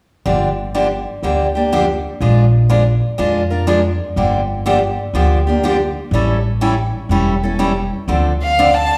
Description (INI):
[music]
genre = acoustic string swing (jazz manouche)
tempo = 122 BPM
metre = 4/4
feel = swing 66% on 8ths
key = unclear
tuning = A4 = 441 Hz
[part]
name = picked steel-string acoustic guitar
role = accompaniment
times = 0.3-8.7 s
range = D3 to Bb4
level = -19 LUFS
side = equal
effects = none
[part]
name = upright bass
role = bass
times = 0.3-8.9 s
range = E1 to F2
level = -20 LUFS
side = equal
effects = none
[part]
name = warm violin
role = melody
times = 8.4-9.0 s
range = F5 to A5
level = -15 LUFS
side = equal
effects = none
[sound]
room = wet recital hall reverb, RT60 1.5 s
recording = recorded in a church or concert hall, small room ambience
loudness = -16 LUFS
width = mono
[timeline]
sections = 0.3-8.1 A section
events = none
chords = 0.3 Gm7; 2.2 Bb7; 4.2 Gm7; 6.1 A7; 8.1 Dm7